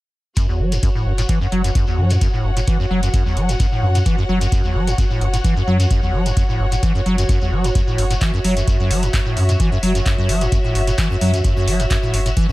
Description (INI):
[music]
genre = acid house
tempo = 130 BPM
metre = 4/4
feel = straight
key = F# minor pentatonic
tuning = A4 = 440 Hz
[part]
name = acid bass, square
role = riff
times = 0.4-12.5 s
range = E2 to F#3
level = -20 LUFS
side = equal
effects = wide subtle chorus, tape echo
[part]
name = booming analog drum machine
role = drums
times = 0.4-12.5 s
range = handclaps, hi-hat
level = -27 LUFS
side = equal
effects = none
[part]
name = electronic kick drum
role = drums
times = 0.4-12.5 s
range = none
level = -19 LUFS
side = equal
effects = none
[part]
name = shekere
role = percussion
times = 0.4-12.5 s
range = none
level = -33 LUFS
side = left 3 dB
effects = none
[part]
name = warm studio string section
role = texture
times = 0.4-12.5 s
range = F#4 to F#5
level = -25 LUFS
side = equal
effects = sidechain pumping
[part]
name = warm sub bass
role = bass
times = 0.6-12.3 s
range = F#1 to F#2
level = -19 LUFS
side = equal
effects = sidechain pumping
[sound]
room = little or no reverb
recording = dry, gritty hardware recording, transformer saturation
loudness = -15 LUFS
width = side -18 dB against mid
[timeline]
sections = 0.4-12.5 A section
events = none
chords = 0.4 F#5